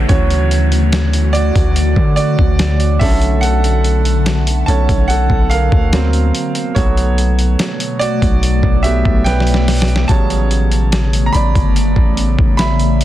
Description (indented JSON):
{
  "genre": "contemporary R&B",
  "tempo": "72 BPM",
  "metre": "4/4",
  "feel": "straight",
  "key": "unclear",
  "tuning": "A4 = 441 Hz",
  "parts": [
    { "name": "clear concert grand piano", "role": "accompaniment", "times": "0.0-13.0 s", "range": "C#3 to B5", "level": "-18 LUFS", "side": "right 4 dB", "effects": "none" },
    { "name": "ethereal airy pad", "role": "sustained chords", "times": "0.0-13.0 s", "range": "B2 to A5", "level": "-21 LUFS", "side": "left 3 dB", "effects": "ensemble chorus, built-in reverb" },
    { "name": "long sustained 808-style bass", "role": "bass", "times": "0.0-13.0 s", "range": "G1 to D3", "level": "-14 LUFS", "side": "equal", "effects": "none" },
    { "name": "downlifter", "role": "sound effects", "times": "0.0-3.4 s", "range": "none", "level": "-32 LUFS", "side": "left 2 dB", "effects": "none" },
    { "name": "dusty soul sampler-style drum kit", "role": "drums", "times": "0.1-13.0 s", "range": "hi-hat, kick drum, snare drum", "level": "-16 LUFS", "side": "equal", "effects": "overdrive" }
  ],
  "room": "digital ambience",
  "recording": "dense, heavily limited modern master",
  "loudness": "-11 LUFS",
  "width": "side -13 dB against mid",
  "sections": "0.0-13.0 A section",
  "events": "grand piano solo 0.0-13.0; drum fill 9.3-10.1",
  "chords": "0.1 Dmaj7; 3.0 Bm7; 5.9 D7alt; 6.8 Gmaj9/B; 10.1 A13"
}